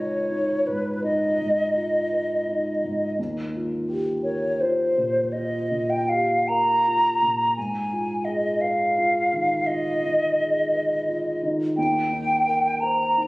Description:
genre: classical, impressionist duo for flute and grand piano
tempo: 56 BPM (dotted quarters)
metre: 12/8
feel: rubato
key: Eb mixolydian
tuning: A4 = 440 Hz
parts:
  - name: hollow concert flute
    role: melody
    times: 0.0-13.3 s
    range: Cb5 to Bb5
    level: -22 LUFS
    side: equal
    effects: none
  - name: dark baby grand piano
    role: accompaniment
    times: 0.0-13.3 s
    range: Db2 to C5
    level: -27 LUFS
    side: equal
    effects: none
room: moderate scoring stage reverb, RT60 1.7 s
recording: recorded on a phone in the room, studio reverb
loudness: -21 LUFS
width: side -22 dB against mid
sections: 0.0-13.3 A section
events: none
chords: 0.0 Db9; 3.2 Ebadd9; 7.6 Abm6; 11.8 Eb6

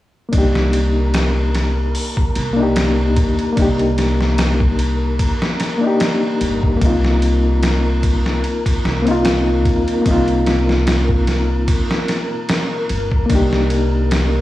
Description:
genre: trip hop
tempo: 74 BPM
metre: 4/4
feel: swing 55% on 16ths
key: C minor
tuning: A4 = 440 Hz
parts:
  - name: overdriven reed electric piano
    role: accompaniment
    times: 0.3-14.4 s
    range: Bb3 to G4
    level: -18 LUFS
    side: left 2 dB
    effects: fast tremolo, low-pass filter, tape echo
  - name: upright bass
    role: bass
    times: 0.3-14.4 s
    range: G1 to Eb2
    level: -18 LUFS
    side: equal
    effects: none
  - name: trip hop sampler-style drum kit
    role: drums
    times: 0.3-14.3 s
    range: hi-hat, kick drum, ride cymbal, snare drum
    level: -20 LUFS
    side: equal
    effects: none
  - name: wind-like tuned noise texture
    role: texture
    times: 0.7-14.4 s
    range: Bb4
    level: -28 LUFS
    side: left 1 dB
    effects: built-in reverb
room: little or no reverb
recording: dry, gritty hardware recording, transformer saturation, vinyl crackle, studio reverb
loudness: -14 LUFS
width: side -15 dB against mid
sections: 0.3-14.4 A section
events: none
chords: 0.3 Cm7; 6.8 Ebsus2; 13.3 Cm7

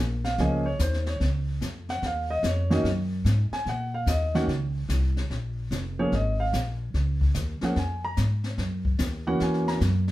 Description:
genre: jazz piano trio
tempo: 146 BPM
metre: 4/4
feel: swing 66% on 8ths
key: Bb minor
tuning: A4 = 445 Hz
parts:
  - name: upright bass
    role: bass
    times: 0.0-10.1 s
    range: F1 to Bb2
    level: -26 LUFS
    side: equal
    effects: none
  - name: warm concert grand piano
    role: melody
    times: 0.2-9.8 s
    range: Eb3 to Bb5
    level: -27 LUFS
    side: right 1 dB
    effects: none
  - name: jazz brush drum kit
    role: drums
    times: 0.2-10.1 s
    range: brushed snare drum, hi-hat, kick drum, snare drum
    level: -32 LUFS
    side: left 2 dB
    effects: none
room: moderate studio reverb, RT60 0.6 s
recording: heard from further back in the room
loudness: -24 LUFS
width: side -16 dB against mid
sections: 0.0-10.1 A section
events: none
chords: 0.0 Bbm; 2.0 Ebm7; 5.3 Bbm7; 8.6 Gb7

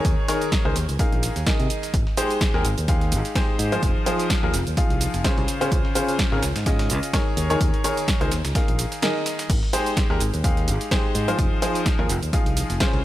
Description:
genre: piano house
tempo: 127 BPM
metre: 4/4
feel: swing 55% on 16ths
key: Ab major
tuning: A4 = 440 Hz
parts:
  - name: clear grand piano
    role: riff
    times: 0.0-13.0 s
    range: Db3 to F5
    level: -24 LUFS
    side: left 1 dB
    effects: sidechain pumping, tape echo
  - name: fingered electric bass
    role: bass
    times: 0.0-13.0 s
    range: F1 to C3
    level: -25 LUFS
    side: equal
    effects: tube saturation, sidechain pumping
  - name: dusty soul sampler-style drum kit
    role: drums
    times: 0.0-13.0 s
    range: hi-hat, snare drum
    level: -37 LUFS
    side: equal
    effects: none
  - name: electronic kick drum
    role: drums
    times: 0.0-12.9 s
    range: none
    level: -23 LUFS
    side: equal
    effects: none
  - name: punchy analog drum machine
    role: drums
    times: 0.0-12.9 s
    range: crash cymbal, hi-hat, rim click, shaker, snare drum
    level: -29 LUFS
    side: right 2 dB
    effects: none
room: digital ambience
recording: none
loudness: -20 LUFS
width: side -14 dB against mid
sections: 0.0-13.0 A section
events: none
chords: 0.0 Eb7sus4; 1.9 Abmaj7; 3.8 Fm7; 5.5 Dbmaj7; 7.4 Eb7sus4; 9.5 Abmaj7; 11.4 Fm7

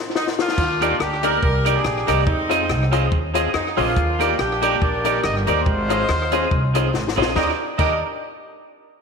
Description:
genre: ska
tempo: 142 BPM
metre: 4/4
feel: swing 55% on 8ths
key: Eb major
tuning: A4 = 441 Hz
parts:
  - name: warm horn section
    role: melody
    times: 0.0-8.0 s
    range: Ab3 to Eb5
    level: -24 LUFS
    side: equal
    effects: none
  - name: compact cocktail drum kit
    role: drums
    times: 0.2-7.9 s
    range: crash cymbal, hi-hat, kick drum, rim click, snare drum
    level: -24 LUFS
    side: left 2 dB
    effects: slapback echo
  - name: upright bass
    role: bass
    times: 0.6-8.0 s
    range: G1 to F2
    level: -24 LUFS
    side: equal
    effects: none
  - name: clean electric guitar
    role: accompaniment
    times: 0.8-7.9 s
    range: Bb3 to Eb5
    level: -23 LUFS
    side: right 10 dB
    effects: slapback echo
  - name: tack piano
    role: stabs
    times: 0.8-8.0 s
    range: Eb4 to Eb5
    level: -25 LUFS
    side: left 9 dB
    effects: none
room: moderate echo chamber reverb, RT60 2.1 s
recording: 1960s-style stereo with parts hard left and right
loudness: -17 LUFS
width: side -5 dB against mid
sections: 0.6-7.4 A section; 7.4-9.0 B section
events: drum fill 0.0-0.6, 6.9-7.4; stop 0.0-0.6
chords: 0.0 Bbsus4; 0.6 Ebmaj7; 2.3 Fm7; 4.0 Ebmaj7; 5.7 Ab6; 7.4 Ebmaj7

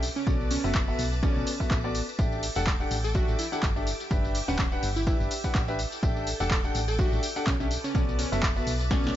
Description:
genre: piano house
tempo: 125 BPM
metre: 4/4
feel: swing 56% on 16ths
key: A mixolydian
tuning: A4 = 440 Hz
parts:
  - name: string machine, violins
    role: sustained chords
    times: 0.0-9.2 s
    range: G4 to D6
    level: -39 LUFS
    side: equal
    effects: ensemble chorus, sidechain pumping
  - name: solid FM bass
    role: bass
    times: 0.0-9.1 s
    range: D1 to B1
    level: -31 LUFS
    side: equal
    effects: sidechain pumping
  - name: punchy analog drum machine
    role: drums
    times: 0.0-9.2 s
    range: handclaps, hi-hat, snare drum, tambourine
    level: -34 LUFS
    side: equal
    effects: none
  - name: plucky unison lead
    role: melody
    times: 0.2-9.2 s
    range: C#4 to A4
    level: -34 LUFS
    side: right 1 dB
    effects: ping-pong delay
  - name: clear grand piano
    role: riff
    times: 0.3-9.1 s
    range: B3 to F#5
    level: -32 LUFS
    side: left 1 dB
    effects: sidechain pumping, ping-pong delay
  - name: electronic kick drum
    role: drums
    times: 0.3-9.0 s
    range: none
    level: -27 LUFS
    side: equal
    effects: none
  - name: tambourine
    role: percussion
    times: 2.2-9.1 s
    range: none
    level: -45 LUFS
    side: left 7 dB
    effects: none
room: little or no reverb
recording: nothing above 7.7 kHz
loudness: -24 LUFS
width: side -12 dB against mid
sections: 0.0-9.2 A section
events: drum fill 8.9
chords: 0.0 Bm7; 2.2 A7sus4; 3.9 Em7; 5.8 A7sus4; 7.7 Bm7

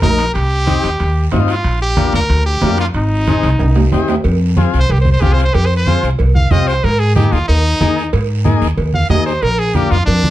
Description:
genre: latin, cumbia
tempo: 185 BPM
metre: 4/4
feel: straight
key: unclear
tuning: A4 = 442 Hz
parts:
  - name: brilliant trumpet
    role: melody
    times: 0.0-10.3 s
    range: D4 to F5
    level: -18 LUFS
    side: equal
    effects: plate reverb
  - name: combo organ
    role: accompaniment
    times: 0.0-10.0 s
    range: Bb3 to Bb4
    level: -20 LUFS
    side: left 6 dB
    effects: none
  - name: upright bass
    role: bass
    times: 0.0-10.3 s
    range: Ab1 to Ab2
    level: -14 LUFS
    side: equal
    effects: none
  - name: congas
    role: percussion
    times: 0.0-10.3 s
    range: none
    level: -17 LUFS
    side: right 1 dB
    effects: none
  - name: guiro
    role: percussion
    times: 0.0-10.3 s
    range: none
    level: -33 LUFS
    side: right 6 dB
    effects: none
  - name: timbales and cowbell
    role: percussion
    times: 0.0-10.2 s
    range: none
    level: -22 LUFS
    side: right 5 dB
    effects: none
room: light reverb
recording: dark, warm production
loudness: -12 LUFS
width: side -14 dB against mid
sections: 0.0-4.2 A section; 4.2-10.3 B section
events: drum fill 3.6-4.2; trumpet solo 4.2-10.3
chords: 0.3 Cm; 1.6 Bb; 2.9 Ab; 4.2 Fm; 6.8 Absus2; 9.4 Bb

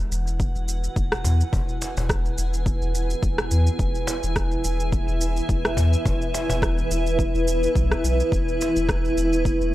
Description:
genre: organic downtempo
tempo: 106 BPM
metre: 4/4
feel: swing 55% on 16ths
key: E major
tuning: A4 = 440 Hz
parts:
  - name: granular cloud pad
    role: sustained chords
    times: 0.2-9.7 s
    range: A3 to G#5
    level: -26 LUFS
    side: equal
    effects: built-in reverb, sidechain pumping
  - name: warm sub bass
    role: bass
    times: 0.0-9.7 s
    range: E1 to E2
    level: -23 LUFS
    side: equal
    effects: transformer saturation
  - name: electronic shaker and rim click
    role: drums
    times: 0.1-9.7 s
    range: none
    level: -29 LUFS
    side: equal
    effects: overdrive
  - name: electronic kick drum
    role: drums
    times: 0.4-9.6 s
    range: none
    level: -26 LUFS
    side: equal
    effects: overdrive
  - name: cajon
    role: percussion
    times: 1.2-9.1 s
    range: none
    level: -32 LUFS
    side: left 2 dB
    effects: none
room: little or no reverb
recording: dry, gritty hardware recording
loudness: -20 LUFS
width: side -15 dB against mid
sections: 0.0-9.7 A section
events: none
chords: 0.0 E; 8.3 A5/E

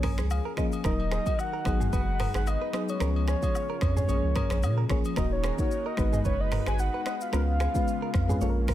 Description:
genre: afrobeats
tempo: 111 BPM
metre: 4/4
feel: swing 55% on 16ths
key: Eb minor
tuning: A4 = 442 Hz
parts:
  - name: soft octave-layered synth lead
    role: melody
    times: 0.0-8.7 s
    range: Db5 to Ab5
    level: -33 LUFS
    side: equal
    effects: chorus, tape echo
  - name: mellow FM electric piano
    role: accompaniment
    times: 0.0-8.7 s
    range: F3 to Bb5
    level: -32 LUFS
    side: left 4 dB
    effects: chorus, tremolo
  - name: direct-recorded clean electric guitar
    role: riff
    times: 0.0-8.7 s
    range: F4 to Eb5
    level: -39 LUFS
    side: right 11 dB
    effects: spring reverb, tape echo
  - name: warm sub bass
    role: bass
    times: 0.0-8.7 s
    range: Eb1 to Bb2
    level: -28 LUFS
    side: equal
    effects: none
  - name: afro-pop drum kit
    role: drums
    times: 0.0-8.7 s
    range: finger snaps, hi-hat, kick drum, rim click, shaker, toms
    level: -30 LUFS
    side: equal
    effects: none
  - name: agogo bells and woodblock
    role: percussion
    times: 0.0-5.2 s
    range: none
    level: -42 LUFS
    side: left 5 dB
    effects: none
  - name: lush unison pad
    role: sustained chords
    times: 0.8-8.7 s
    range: Db3 to Cb5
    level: -40 LUFS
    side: equal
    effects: chorus
room: little or no reverb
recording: none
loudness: -25 LUFS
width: side -13 dB against mid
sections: 0.0-5.2 A section; 5.2-8.7 B section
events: FM electric piano fill 0.0-0.8, 8.4-8.7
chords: 0.0 Bbm7; 0.8 Ebm; 1.7 Abm7; 3.0 Db7; 4.1 Bbm7; 5.2 Ebm; 6.0 Abm7; 7.3 Db7

